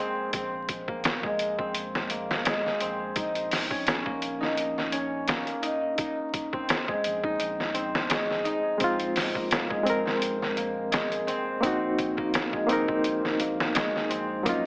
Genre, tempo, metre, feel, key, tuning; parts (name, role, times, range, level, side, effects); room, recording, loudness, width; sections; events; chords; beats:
trip hop; 85 BPM; 4/4; swing 55% on 16ths; A4 = 440 Hz
concert harp; arpeggios; 0.0-14.7 s; Ab3 to Eb4; -29 LUFS; equal; tape echo
soft dub sub bass; bass; 0.0-14.7 s; F1 to Bb1; -45 LUFS; equal; tube saturation
trip hop sampler-style drum kit; drums; 0.3-14.6 s; hi-hat, kick drum, snare drum; -28 LUFS; equal
bright reed electric piano; accompaniment; 8.8-14.7 s; Gb3 to Bb4; -27 LUFS; equal; overdrive, fast tremolo, tape echo
light reverb, digital ambience; vinyl crackle, AM radio sound; -25 LUFS; side -27 dB against mid
0.0-14.7 A section
0.3 Abadd9/Bb; 3.2 Eb5/Bb; 6.0 Fm7/Bb (rootless); 8.8 Bbsus2; 11.6 Ab9/Bb
| 0.34 1.04 1.75 2.46 | 3.16 3.87 4.57 5.28 | 5.99 6.69 7.40 8.10 | 8.81 9.51 10.22 10.93 | 11.63 12.34 13.04 13.75 | 14.46